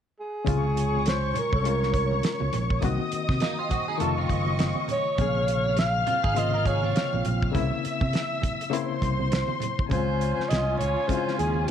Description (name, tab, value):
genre	lush 1970s-style soul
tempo	102 BPM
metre	4/4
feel	swing 58% on 16ths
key	Db major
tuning	A4 = 441 Hz
part	breathy alto saxophone	melody	0.2-11.7 s	Ab4 to F5	-28 LUFS	right 1 dB	tape echo
part	barky reed electric piano	accompaniment	0.4-11.7 s	C3 to Ab4	-31 LUFS	left 10 dB	overdrive, fast tremolo
part	dark symphonic string section	second line	0.5-11.7 s	Db4 to F6	-30 LUFS	left 2 dB	none
part	fingered electric bass	bass	0.5-11.6 s	F1 to C3	-27 LUFS	right 1 dB	none
part	damped 70s drum kit	drums	0.5-11.7 s	hi-hat, kick drum, snare drum	-28 LUFS	right 1 dB	none
part	congas	percussion	0.5-11.7 s	none	-37 LUFS	right 9 dB	none
part	clean electric guitar	riff	3.4-7.5 s	Bb3 to C5	-33 LUFS	right 12 dB	ensemble chorus
room	light reverb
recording	1960s-style stereo with parts hard left and right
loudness	-23 LUFS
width	side -9 dB against mid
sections	0.5-9.9 A section; 9.9-11.7 B section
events	none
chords	0.5 Dbmaj7; 2.8 Cm7b5; 4.0 F7b13; 5.2 Bbm9; 7.5 C7b9; 9.9 Dbmaj7